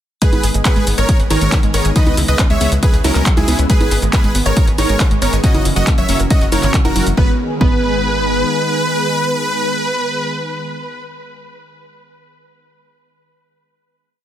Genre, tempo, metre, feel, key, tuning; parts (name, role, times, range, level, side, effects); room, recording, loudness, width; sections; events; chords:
uplifting trance; 138 BPM; 4/4; straight; G# minor; A4 = 440 Hz
dense compressed supersaw; melody; 0.2-11.0 s; C#4 to E5; -20 LUFS; equal; sidechain pumping, tape echo
bright grand piano; second line; 0.2-11.0 s; G#4 to E5; -28 LUFS; equal; sidechain pumping, tape echo
glassy wavetable pluck; second line; 0.2-11.0 s; C#3 to G#4; -25 LUFS; right 1 dB; chorus, digital delay
analog string pad; sustained chords; 0.2-10.6 s; C#3 to G#4; -23 LUFS; left 1 dB; ensemble chorus, sidechain pumping
analog pluck; arpeggios; 0.2-7.7 s; F#3 to D#5; -26 LUFS; right 4 dB; chorus, cassette tape, sidechain pumping, tape echo
electronic kick drum; drums; 0.2-7.7 s; -14 LUFS; equal
punchy analog drum machine; drums; 0.2-7.2 s; congas, handclaps, hi-hat, shaker; -21 LUFS; right 1 dB
tight sequencer bass; bass; 0.3-8.4 s; F#1 to C#2; -18 LUFS; equal; tube saturation, sidechain pumping
little or no reverb; -12 LUFS; side -11 dB against mid
0.2-7.2 drop; 7.2-10.7 final chord
drop 0.2-7.2
0.2 G#m; 2.0 C#m7; 3.7 G#m; 5.4 F#7; 7.2 G#m